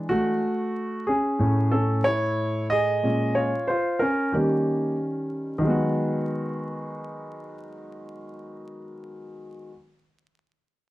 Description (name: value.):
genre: hip hop.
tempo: 92 BPM.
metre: 4/4.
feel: swing 62% on 16ths.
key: unclear.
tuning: A4 = 438 Hz.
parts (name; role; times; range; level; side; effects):
warm concert grand piano; accompaniment; 0.0-9.7 s; A2 to D#5; -24 LUFS; equal; none.
room: wet studio reverb, RT60 0.6 s.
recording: dark, warm production, vinyl crackle.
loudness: -22 LUFS.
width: side -16 dB against mid.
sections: 0.0-5.6 A section; 5.6-8.2 B section.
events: grand piano solo 0.0-5.6.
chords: 0.4 Amaj7; 3.0 A#m7; 4.3 D#7; 5.6 G#m7.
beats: | 0.42 1.07 1.72 2.38 | 3.03 3.68 4.33 4.98 | 5.63 6.29 6.94 7.59.